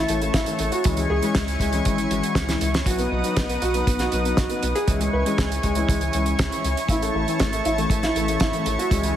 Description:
italo disco; 119 BPM; 4/4; straight; A4 = 435 Hz
dark baby grand piano; melody; 0.0-9.1 s; G#3 to B4; -26 LUFS; equal; tape echo
lush unison pad; sustained chords; 0.0-9.2 s; D#4 to D#6; -27 LUFS; equal; chorus
analog synth brass; stabs; 0.0-9.2 s; E3 to F#4; -28 LUFS; left 3 dB; chorus
round analog bass; bass; 0.0-9.1 s; G#1 to C#2; -27 LUFS; equal
damped 70s drum kit; drums; 0.1-9.1 s; hi-hat, snare drum; -28 LUFS; right 1 dB; studio reverb
kick drum; drums; 0.3-9.0 s; -25 LUFS; equal; studio reverb
moderate lush hall reverb, RT60 2.7 s; heavily compressed radio sound, multiband compression; -20 LUFS; side -11 dB against mid
0.0-9.2 A section
drum fill 2.5-2.9
0.0 A; 0.8 C#m; 2.9 B; 4.9 C#m; 6.9 A

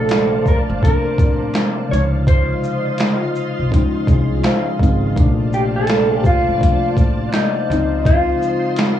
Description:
lo-fi hip hop; 83 BPM; 4/4; swing 63% on 16ths; Bb major; A4 = 440 Hz
mellow electric guitar; melody; 0.0-8.7 s; D4 to Db5; -20 LUFS; equal; tape echo, plate reverb
muted felt-like synth keys; accompaniment; 0.0-9.0 s; C3 to Ab5; -21 LUFS; left 2 dB; chorus, cassette tape
soft string machine; sustained chords; 0.0-9.0 s; F4 to C6; -26 LUFS; left 1 dB; ensemble chorus, plate reverb
upright bass; bass; 0.0-8.3 s; G1 to Db2; -22 LUFS; equal; transformer saturation
boom bap sampler-style drum kit; drums; 0.1-9.0 s; hi-hat, kick drum, shaker, snare drum; -16 LUFS; equal
finger snaps; percussion; 0.1-9.0 s; -35 LUFS; right 1 dB
vibraphone with soft mallets; second line; 4.1-5.1 s; Eb4 to Db5; -29 LUFS; right 2 dB; tape echo, plate reverb
moderate studio reverb, RT60 0.6 s; worn, warbling old tape, cassette tape, warbly pitch drift, small room ambience; -14 LUFS; side -11 dB against mid
0.0-9.0 A section
0.0 Bbmaj9; 1.9 Dbmaj9; 5.2 Bbmaj9; 7.7 Dbmaj9

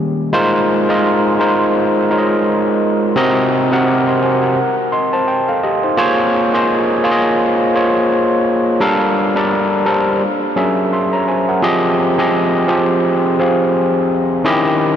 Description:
R&B; 85 BPM; 4/4; swing 58% on 16ths; Ab major; A4 = 441 Hz
overdriven tine electric piano; solo; 0.0-15.0 s; C3 to D6; -12 LUFS; equal
wet huge ambient reverb, RT60 7.5 s; dreamy mix soaked in reverb; -12 LUFS; side -9 dB against mid
0.3-15.0 A section
0.3 Ab69; 3.2 Cm7b5; 4.6 N.C.; 6.0 Bbm9; 8.8 Gm9; 10.2 Gb9; 11.6 Fm9; 14.4 Eb7b9

